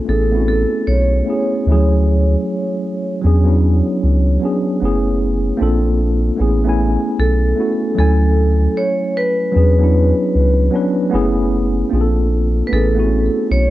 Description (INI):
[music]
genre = lo-fi hip hop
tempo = 76 BPM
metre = 4/4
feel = swing 64% on 16ths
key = A major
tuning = A4 = 438 Hz
[part]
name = mellow tine electric piano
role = accompaniment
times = 0.0-13.7 s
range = E3 to G#5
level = -18 LUFS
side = equal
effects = medium stereo tremolo, cassette tape, low-pass filter
[part]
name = vibraphone with medium hard mallets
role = melody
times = 0.1-13.7 s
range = A4 to C#5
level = -21 LUFS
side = right 1 dB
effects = low-pass filter
[part]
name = soft dub sub bass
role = bass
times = 0.1-13.7 s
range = F#1 to E2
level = -15 LUFS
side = equal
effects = none
[sound]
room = light reverb, small room reverb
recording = cassette tape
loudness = -13 LUFS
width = side -15 dB against mid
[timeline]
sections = 0.0-6.4 A section; 6.4-13.7 A section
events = none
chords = 0.1 Amaj9; 1.7 Dmaj9#11; 3.2 E13; 4.8 F#m11; 5.6 Bbmaj9; 6.4 Amaj9; 8.0 Dmaj9#11; 9.5 E13; 11.1 F#m11; 11.9 Bbmaj9; 12.7 Amaj9